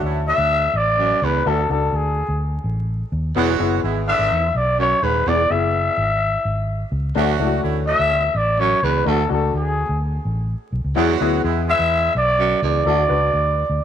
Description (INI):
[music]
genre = soul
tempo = 126 BPM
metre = 4/4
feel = straight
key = D lydian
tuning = A4 = 443 Hz
[part]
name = mellow horn section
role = second line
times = 0.0-12.1 s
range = D3 to F#4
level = -26 LUFS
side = right 11 dB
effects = none
[part]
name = dark baby grand piano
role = accompaniment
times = 0.0-13.6 s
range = A3 to B4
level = -24 LUFS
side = left 8 dB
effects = none
[part]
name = vintage muted fingered electric bass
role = bass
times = 0.0-13.8 s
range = Eb1 to E2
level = -22 LUFS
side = equal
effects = none
[part]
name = growling trumpet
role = melody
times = 0.3-13.8 s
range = G#4 to E5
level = -19 LUFS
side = left 1 dB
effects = none
[part]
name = breathy baritone saxophone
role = riff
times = 1.0-13.0 s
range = D2 to G#2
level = -26 LUFS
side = right 10 dB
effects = none
[sound]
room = light reverb, small room ambience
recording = 1960s-style stereo with parts hard left and right, vinyl crackle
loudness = -17 LUFS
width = side -9 dB against mid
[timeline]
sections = 0.0-13.8 A section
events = none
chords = 0.0 D; 3.4 E; 7.2 D; 11.0 E; 12.9 D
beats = 0.02 0.50 0.98 | 1.45 1.93 2.40 2.88 | 3.36 3.83 4.31 4.78 | 5.26 5.74 6.21 6.68 | 7.16 7.64 8.11 8.59 | 9.06 9.54 10.01 10.49 | 10.96 11.44 11.91 12.39 | 12.86 13.34 13.81